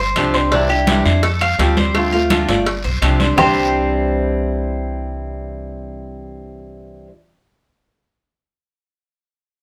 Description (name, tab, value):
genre	latin, Cuban son and guajira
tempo	168 BPM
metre	4/4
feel	straight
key	C major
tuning	A4 = 440 Hz
part	Cuban tres	arpeggios	0.0-7.1 s	C4 to F5	-23 LUFS	equal	none
part	upright bass	bass	0.0-7.1 s	G1 to F2	-23 LUFS	equal	none
part	picked old ladder-braced acoustic guitar	accompaniment	0.2-7.1 s	C3 to G4	-23 LUFS	equal	none
part	claves	percussion	0.2-3.5 s	none	-28 LUFS	equal	none
part	congas	percussion	0.2-3.5 s	none	-25 LUFS	equal	none
part	cowbell and bongos	percussion	0.2-3.5 s	none	-26 LUFS	equal	none
part	guiro	percussion	0.2-3.5 s	none	-28 LUFS	equal	none
room	moderate studio reverb, RT60 0.8 s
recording	none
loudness	-17 LUFS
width	mono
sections	0.0-3.4 A section; 3.4-6.2 B section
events	none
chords	0.0 G7sus4; 0.5 Cadd9; 1.2 Fadd9; 1.9 Dm7; 2.7 G7sus4; 3.4 Cadd9